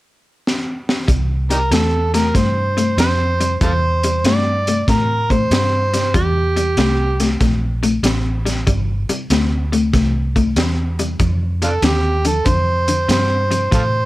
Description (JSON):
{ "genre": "electric blues shuffle", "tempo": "95 BPM", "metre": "4/4", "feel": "swing 67% on 8ths", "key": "C mixolydian", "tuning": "A4 = 440 Hz", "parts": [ { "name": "crunchy breakbeat drum kit", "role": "drums", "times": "0.5-13.9 s", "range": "hi-hat, kick drum, snare drum", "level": "-20 LUFS", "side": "equal", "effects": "none" }, { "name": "electric guitar through a small old amp", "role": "riff", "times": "1.1-14.1 s", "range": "F2 to A3", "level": "-21 LUFS", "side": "left 4 dB", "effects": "none" }, { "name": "vintage muted fingered electric bass", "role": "bass", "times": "1.1-14.1 s", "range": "G1 to A2", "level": "-19 LUFS", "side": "equal", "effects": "none" }, { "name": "overdriven harmonica", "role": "melody", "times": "1.5-7.4, 11.6-14.1 s", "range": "D4 to D5", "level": "-19 LUFS", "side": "right 2 dB", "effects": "none" } ], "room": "little or no reverb", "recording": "none", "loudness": "-15 LUFS", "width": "side -17 dB against mid", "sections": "0.0-1.1 A section; 1.1-14.1 B section", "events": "drum fill 0.4-1.1", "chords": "0.0 N.C.; 1.1 C; 11.2 F7(no3)", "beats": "0.45 | 1.08 1.71 2.35 2.98 | 3.61 4.25 4.88 5.51 | 6.14 6.78 7.41 8.04 | 8.67 9.30 9.94 10.57 | 11.20 11.83 12.46 13.09 | 13.72" }